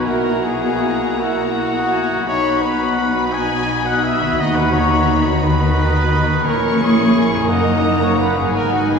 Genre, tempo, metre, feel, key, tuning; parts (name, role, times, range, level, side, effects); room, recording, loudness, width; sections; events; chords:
classical, slow romantic movement for symphony orchestra; 57 BPM (dotted quarters); 6/8; rubato; B major; A4 = 439 Hz
clear clarinet; second line; 0.0-9.0 s; D#4 to A#4; -28 LUFS; equal
clear oboe; second line; 0.0-9.0 s; C#5 to G#5; -27 LUFS; equal
mellow hollow concert flute; second line; 0.0-9.0 s; F#5 to G#6; -24 LUFS; left 4 dB
warm symphonic violin section; second line; 0.0-9.0 s; F#4 to G#5; -28 LUFS; left 3 dB
dark symphonic viola section; accompaniment; 0.0-9.0 s; C#4 to B4; -26 LUFS; right 2 dB
warm bassoon; accompaniment; 0.0-9.0 s; A#3 to E4; -27 LUFS; right 2 dB
concert harp; arpeggios; 0.0-9.0 s; F#2 to B4; -27 LUFS; left 6 dB
clear trumpet; stabs; 0.0-9.0 s; F#4 to G#5; -23 LUFS; right 1 dB
warm symphonic cello section; bass; 0.0-9.0 s; F#2 to D#3; -21 LUFS; equal
warm symphonic double bass section; bass; 0.0-9.0 s; F#1 to D#2; -23 LUFS; right 2 dB
warm symphonic violin section; melody; 0.1-9.0 s; G#5 to C#6; -28 LUFS; left 2 dB
warm French horn section; sustained chords; 0.1-9.0 s; A#3 to E4; -27 LUFS; left 3 dB
timpani; percussion; 0.1-1.2 s; barely audible
wet church reverb, RT60 3.6 s; small room ambience; -14 LUFS; side -6 dB against mid
0.0-9.0 A section
0.1 F#7/B; 2.3 B; 4.4 B/D#; 6.5 A#dim; 7.5 D#m/F#